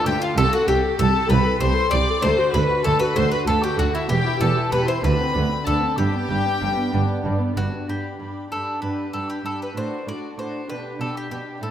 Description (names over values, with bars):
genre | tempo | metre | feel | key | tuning
classical, baroque-style concerto movement with solo episodes | 64 BPM (dotted quarters) | 6/8 | straight | G major | A4 = 440 Hz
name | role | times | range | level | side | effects
bowl-back mandolin | melody | 0.0-11.7 s | E4 to D5 | -27 LUFS | left 1 dB | none
warm chamber violin section | melody | 0.0-11.7 s | E5 to D6 | -29 LUFS | left 5 dB | none
dark chamber viola section | accompaniment | 0.0-11.7 s | B3 to A4 | -26 LUFS | left 1 dB | none
lute | accompaniment | 0.0-11.7 s | D2 to G4 | -32 LUFS | right 1 dB | none
warm chamber violin section | second line | 0.1-11.7 s | E4 to D5 | -28 LUFS | left 2 dB | none
rich chamber double bass section | bass | 0.1-7.6 s | E1 to D2 | -24 LUFS | right 2 dB | none
warm chamber cello section | bass | 0.1-11.7 s | C2 to B2 | -26 LUFS | right 3 dB | none
room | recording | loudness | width
moderate concert hall reverb, RT60 2.0 s | none | -19 LUFS | side -10 dB against mid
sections
0.0-7.9 A section; 7.9-11.7 B section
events
none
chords
0.4 Am7/C; 2.2 D; 4.1 Em; 5.0 D7; 6.0 G; 9.8 D/A; 10.7 G/B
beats
| 0.37 1.30 | 2.23 3.16 | 4.09 5.04 | 5.98 6.93 | 7.88 8.82 | 9.76 10.69 | 11.62